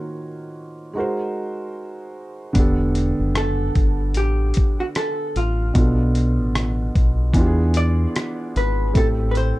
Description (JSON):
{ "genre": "lo-fi hip hop", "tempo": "75 BPM", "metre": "4/4", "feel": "swing 58% on 16ths", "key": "unclear", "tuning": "A4 = 439 Hz", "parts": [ { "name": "vintage hollow-body jazz guitar", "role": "melody", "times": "0.0-9.6 s", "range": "F4 to D5", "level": "-27 LUFS", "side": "equal", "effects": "low-pass filter, analog delay" }, { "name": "felt-muted upright piano", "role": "accompaniment", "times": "0.0-9.6 s", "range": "A2 to C#5", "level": "-24 LUFS", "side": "right 1 dB", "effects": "cassette tape, low-pass filter" }, { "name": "dusty soul sampler-style drum kit", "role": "drums", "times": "2.5-9.6 s", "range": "hi-hat, kick drum, rim click", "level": "-20 LUFS", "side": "equal", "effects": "none" }, { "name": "deep dub fingered electric bass", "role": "bass", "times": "2.6-9.5 s", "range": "E1 to E2", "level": "-20 LUFS", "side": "equal", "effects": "none" } ], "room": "little or no reverb", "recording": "dark, warm production", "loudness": "-18 LUFS", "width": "side -18 dB against mid", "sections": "0.0-2.6 A section; 2.6-9.6 B section", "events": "filter sweep 0.0-2.6", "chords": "0.0 D#m7; 1.0 G#7; 2.6 Em11; 5.8 Bm7b5; 7.4 E7b9; 9.0 Am7" }